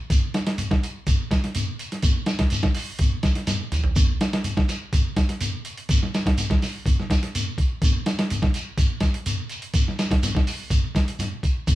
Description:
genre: afrobeat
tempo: 124 BPM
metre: 4/4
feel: straight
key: none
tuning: none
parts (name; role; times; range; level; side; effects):
- boom bap sampler-style drum kit; drums; 0.1-11.8 s; hi-hat, kick drum, snare drum, toms; -21 LUFS; equal; none
- shekere; percussion; 0.1-11.8 s; none; -28 LUFS; equal; none
room: moderate studio reverb, RT60 0.7 s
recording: band playing live in one room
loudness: -21 LUFS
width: side -16 dB against mid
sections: 0.0-11.8 A section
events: drum fill 3.5-4.0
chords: none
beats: | 0.10 0.59 1.07 1.55 | 2.03 2.52 3.00 3.48 | 3.96 4.45 4.93 5.41 | 5.89 6.37 6.86 7.34 | 7.82 8.30 8.78 9.26 | 9.75 10.23 10.71 11.19 | 11.68

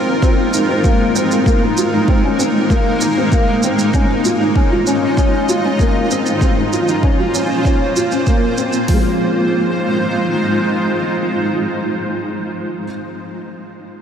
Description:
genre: piano and strings electronica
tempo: 97 BPM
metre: 4/4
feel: straight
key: F minor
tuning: A4 = 440 Hz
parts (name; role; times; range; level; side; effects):
- granular cloud pad; sustained chords; 0.0-12.1 s; Ab3 to Eb5; -18 LUFS; equal; built-in reverb, sidechain pumping
- felt-muted upright piano; riff; 0.0-12.9 s; F3 to F4; -18 LUFS; equal; ensemble chorus, diffuse ambient delay
- deep house drum kit; drums; 0.2-9.0 s; hi-hat, kick drum; -15 LUFS; equal; none
- shaker; drums; 0.2-8.9 s; none; -28 LUFS; right 4 dB; none
room: wet huge ambient reverb, RT60 8.1 s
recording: dreamy mix soaked in reverb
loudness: -13 LUFS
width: side -8 dB against mid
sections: 0.0-8.9 A section; 8.9-11.4 B section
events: none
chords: 0.0 Fm7; 1.5 Dbadd9; 6.4 Bbmadd9; 8.9 Fm7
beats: 0.23 0.84 | 1.46 2.08 2.70 3.32 | 3.94 4.56 5.17 5.79 | 6.41 7.03 7.65 8.27 | 8.89 9.50 10.12 10.74

